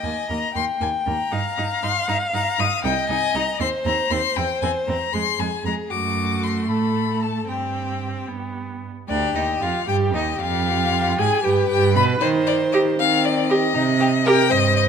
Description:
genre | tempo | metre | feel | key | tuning
quick classical-period movement for string quartet | 78 BPM (dotted quarters) | 6/8 | straight | C minor | A4 = 444 Hz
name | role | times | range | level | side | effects
rich violin | melody | 0.0-14.8 s | C5 to Eb6 | -24 LUFS | left 9 dB | none
rich violin | second line | 0.0-14.9 s | C4 to G5 | -25 LUFS | left 2 dB | none
clear viola | accompaniment | 0.0-14.4 s | Ab3 to B4 | -25 LUFS | right 2 dB | none
clear cello | bass | 0.0-14.9 s | C2 to Eb3 | -24 LUFS | right 5 dB | none
room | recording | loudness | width
moderate scoring stage reverb, RT60 1.6 s | none | -18 LUFS | side -7 dB against mid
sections
0.0-9.1 A section; 9.1-14.9 B section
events
none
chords
0.0 Eb; 1.3 Eb/G; 2.8 Cm; 4.4 C; 5.1 Fm; 5.9 F#madd11; 7.5 C5/G; 8.3 G; 9.1 Ebmaj9/D; 10.7 G7/F; 12.2 Cm/Eb; 13.7 Cm

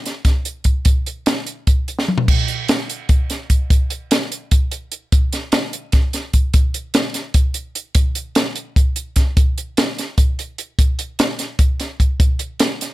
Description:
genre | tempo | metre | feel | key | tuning
rock | 296 BPM (eighths) | 7/8 | straight | none | none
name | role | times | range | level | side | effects
compact cocktail drum kit | drums | 0.1-12.9 s | crash cymbal, hi-hat, kick drum, snare drum, toms | -15 LUFS | equal | none
room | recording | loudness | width
light reverb | none | -16 LUFS | side -17 dB against mid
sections
0.0-2.3 A section; 2.3-12.9 B section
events
drum fill 2.0-2.3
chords
none

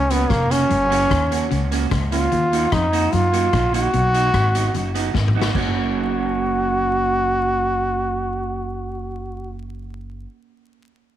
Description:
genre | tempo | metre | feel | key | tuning
ska | 149 BPM | 4/4 | straight | F# major | A4 = 442 Hz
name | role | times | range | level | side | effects
bright trombone | melody | 0.0-9.5 s | A#3 to F#4 | -20 LUFS | equal | none
electric guitar at the edge of break-up | riff | 0.0-5.3 s | E#2 to F#3 | -28 LUFS | left 4 dB | none
upright bass | bass | 0.0-10.2 s | E#1 to F#2 | -24 LUFS | equal | none
electric guitar through a small old amp | accompaniment | 0.1-10.3 s | A#3 to F#4 | -26 LUFS | right 11 dB | tape echo
street-band drum kit | drums | 0.1-5.6 s | crash cymbal, hi-hat, kick drum, rim click, snare drum, toms | -26 LUFS | left 2 dB | none
room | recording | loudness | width
light reverb, small room ambience | 1960s-style stereo, vinyl crackle | -17 LUFS | side -11 dB against mid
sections
0.0-5.5 A section; 5.5-8.8 B section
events
drum fill 5.1-5.5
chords
0.0 F#; 2.3 D#m; 3.9 B; 5.5 F#

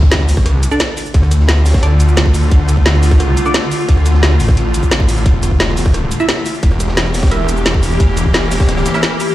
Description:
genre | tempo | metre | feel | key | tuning
dark technical drum and bass | 175 BPM | 4/4 | straight | D minor | A4 = 440 Hz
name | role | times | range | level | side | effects
swarming drone | sustained chords | 0.9-9.3 s | D3 to G4 | -20 LUFS | left 1 dB | built-in reverb, sidechain pumping
snarling distorted saw bass | bass | 0.0-8.8 s | E1 to D2 | -13 LUFS | equal | distortion, tube saturation, sidechain pumping
electronic kick drum | drums | 0.0-8.7 s | none | -11 LUFS | equal | none
impact | sound effects | 0.0-1.1 s | none | -21 LUFS | equal | none
crunchy breakbeat drum kit | drums | 0.1-9.3 s | hi-hat, snare drum | -27 LUFS | equal | none
drum and bass drum kit | drums | 0.1-9.3 s | hi-hat, rim click, shaker, snare drum | -18 LUFS | equal | none
filtered dub chord stab | stabs | 0.7-3.5, 6.2-9.0 s | D4 to E5 | -21 LUFS | right 2 dB | phaser, lush chorus, tape echo
room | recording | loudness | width
small room reverb | played on a big sound system in a bare room, stone room reverb | -10 LUFS | side -15 dB against mid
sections
0.0-9.3 A section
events
impact 0.0-1.1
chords
0.0 Dm; 5.3 Edim

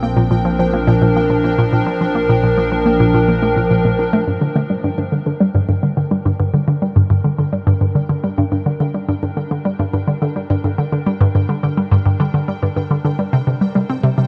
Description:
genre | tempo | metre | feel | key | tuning
ambient, sequencer-driven space music | 106 BPM | 4/4 | straight | G minor | A4 = 440 Hz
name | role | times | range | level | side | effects
evolving wavetable pad | sustained chords | 0.0-14.3 s | F3 to C5 | -23 LUFS | equal | chorus, built-in reverb
hollow square pluck | riff | 0.0-14.3 s | G2 to D4 | -18 LUFS | equal | chorus, phaser, tape echo
fat analog bass | bass | 0.0-4.2 s | Bb1 | -24 LUFS | equal | tube saturation
pulsing gated texture | texture | 0.0-14.3 s | G5 | -34 LUFS | equal | chorus, built-in reverb
room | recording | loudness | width
moderate huge ambient reverb, RT60 7.5 s | none | -16 LUFS | mono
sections
0.0-4.3 A section; 4.3-14.3 B section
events
fade-in on ambient pad 4.3-14.3; fade-in on synth texture 4.3-14.3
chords
0.0 Bb; 4.3 Gm; 13.3 Cm

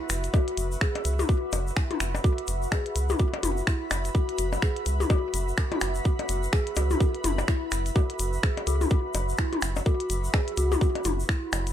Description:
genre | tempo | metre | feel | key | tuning
minimal techno | 126 BPM | 4/4 | swing 59% on 16ths | unclear | A4 = 438 Hz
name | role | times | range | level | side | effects
granular cloud pad | texture | 0.0-11.7 s | F#4 to B5 | -35 LUFS | right 1 dB | built-in reverb, sidechain pumping
rubbery square bass | bass | 0.1-11.7 s | F#1 to C#2 | -28 LUFS | equal | tube saturation, sidechain pumping
minimal click drum kit | drums | 0.1-11.7 s | finger snaps, hi-hat | -31 LUFS | equal | none
tube shaker | percussion | 0.1-11.7 s | none | -38 LUFS | left 4 dB | none
dark detuned synth bell | riff | 0.3-11.3 s | E4 to G#4 | -32 LUFS | left 1 dB | chorus, phaser, vintage 12-bit sampler grit, sidechain pumping, digital delay
electronic kick drum | drums | 0.3-11.4 s | none | -24 LUFS | equal | none
electronic percussion blips and toms | percussion | 0.3-11.6 s | none | -31 LUFS | left 6 dB | digital delay
room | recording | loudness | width
little or no reverb | none | -24 LUFS | side -10 dB against mid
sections
0.0-11.7 A section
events
none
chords
0.0 F#5

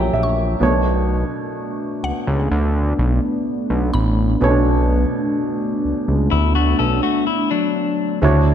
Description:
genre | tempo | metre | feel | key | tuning
contemporary R&B | 63 BPM | 4/4 | straight | unclear | A4 = 438 Hz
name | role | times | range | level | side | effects
dark baby grand piano | accompaniment | 0.0-8.5 s | B2 to G5 | -21 LUFS | right 2 dB | none
deep dark ambient pad | sustained chords | 0.0-8.5 s | D3 to A#4 | -22 LUFS | equal | chorus, built-in reverb
fat analog bass | bass | 0.0-8.5 s | A1 to D2 | -18 LUFS | equal | none
mallet-like synth pluck | texture | 0.0-6.3 s | F#5 to C#6 | -32 LUFS | left 1 dB | chorus, tape echo
clean electric guitar | arpeggios | 6.3-8.2 s | F#3 to A4 | -21 LUFS | left 10 dB | tape echo
room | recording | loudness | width
moderate concert hall reverb, RT60 1.9 s | none | -16 LUFS | side -9 dB against mid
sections
0.0-8.2 A section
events
grand piano fill 0.0-0.6; break 7.3-8.2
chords
0.0 F#7b9; 0.6 Bm7

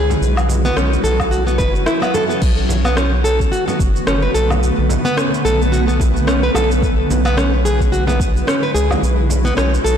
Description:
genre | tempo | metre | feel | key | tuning
organic downtempo | 109 BPM | 4/4 | swing 57% on 16ths | B dorian | A4 = 440 Hz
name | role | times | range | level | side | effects
granular cloud pad | sustained chords | 0.0-10.0 s | D3 to G#5 | -21 LUFS | equal | built-in reverb, sidechain pumping
nylon-string guitar | arpeggios | 0.0-10.0 s | B3 to B4 | -19 LUFS | equal | ping-pong delay
round analog bass | bass | 0.0-10.0 s | F#1 to C#2 | -17 LUFS | equal | sidechain pumping
quartz singing bowl | texture | 0.0-2.4 s | none | barely audible | none | none
afro-pop drum kit | drums | 0.1-10.0 s | cabasa, crash cymbal, rim click, woodblock | -24 LUFS | equal | none
frame drum | percussion | 0.1-9.4 s | none | -28 LUFS | right 4 dB | none
electronic kick drum | drums | 1.2-8.3 s | none | -18 LUFS | equal | none
room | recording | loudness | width
light reverb | blown-out, overdriven recording, overdrive | -14 LUFS | side -8 dB against mid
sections
0.0-2.4 A section; 2.4-10.0 B section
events
none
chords
0.2 F#7(no3)/B; 2.4 Bm7; 6.8 E9/B; 9.0 F#m7/B

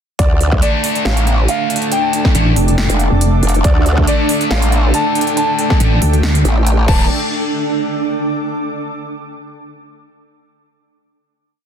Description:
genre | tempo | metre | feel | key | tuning
heavy wobble dubstep | 139 BPM | 4/4 | swing 54% on 16ths, half-time | D minor | A4 = 442 Hz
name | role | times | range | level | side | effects
dark concert grand piano | melody | 0.2-7.0 s | D5 to A5 | -22 LUFS | left 1 dB | dub echo
supersaw pad | sustained chords | 0.2-7.1 s | A3 to A5 | -25 LUFS | equal | sidechain pumping, low-pass filter
growl bass | bass | 0.2-7.1 s | D1 to D2 | -14 LUFS | equal | chorus, overdrive
big-room dance drum kit | drums | 0.2-7.0 s | crash cymbal, hi-hat, snare drum | -22 LUFS | right 1 dB | overdrive
electronic kick drum | drums | 0.2-7.0 s | none | -14 LUFS | equal | overdrive
granular cloud pad | texture | 1.7-8.8 s | D4 to D6 | -20 LUFS | right 2 dB | built-in reverb, sidechain pumping
sludgy distorted guitar | stabs | 0.6-7.0 s | A3 to A4 | -22 LUFS | left 1 dB | overdrive, dub echo
pulsing pluck wobble bass | bass | 2.3-6.4 s | F1 to D2 | -12 LUFS | equal | chorus, overdrive
room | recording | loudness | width
light reverb | dense, heavily limited modern master | -12 LUFS | side -8 dB against mid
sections
0.2-7.1 drop; 7.1-8.8 final chord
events
drop 0.2-7.1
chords
0.2 D5

